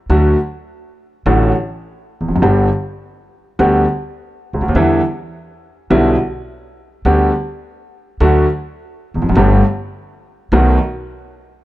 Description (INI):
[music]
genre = tango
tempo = 104 BPM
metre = 4/4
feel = rubato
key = G major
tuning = A4 = 444 Hz
[part]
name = warm concert grand piano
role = accompaniment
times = 0.1-10.8 s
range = G1 to G4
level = -14 LUFS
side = equal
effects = none
[part]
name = upright bass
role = bass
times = 0.1-10.8 s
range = E1 to E2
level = -16 LUFS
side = equal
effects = none
[sound]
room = small room ambience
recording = dry, close 1970s-style studio recording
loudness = -12 LUFS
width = side -16 dB against mid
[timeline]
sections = 0.0-11.6 A section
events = none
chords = 0.1 D; 2.4 G; 4.8 Em7; 7.1 G/D; 8.2 D; 9.4 Gadd9; 10.5 B7